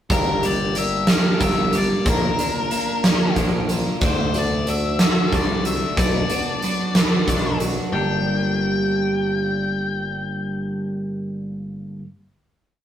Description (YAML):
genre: quiet-loud alternative rock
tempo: 61 BPM (dotted quarters)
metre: 6/8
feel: straight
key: G dorian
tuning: A4 = 440 Hz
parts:
  - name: octave-fuzz lead guitar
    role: melody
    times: 0.1-12.0 s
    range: Bb4 to G5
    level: -26 LUFS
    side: left 4 dB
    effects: distortion
  - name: twelve-string electric guitar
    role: arpeggios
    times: 0.1-12.1 s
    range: G2 to G4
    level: -24 LUFS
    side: equal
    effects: phaser
  - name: overdriven picked electric bass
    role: bass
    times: 0.1-12.0 s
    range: G1 to D2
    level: -27 LUFS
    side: equal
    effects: none
  - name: huge arena drum kit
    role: drums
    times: 0.1-7.8 s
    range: hi-hat, kick drum, snare drum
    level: -20 LUFS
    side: right 1 dB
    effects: none
room: moderate small room reverb, RT60 0.6 s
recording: rough rehearsal-room recording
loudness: -18 LUFS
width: side -10 dB against mid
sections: 0.1-7.9 verse; 7.9-11.8 final chord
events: none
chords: 0.1 Gm; 2.1 Bb; 4.0 D; 6.0 Bm; 7.9 Gm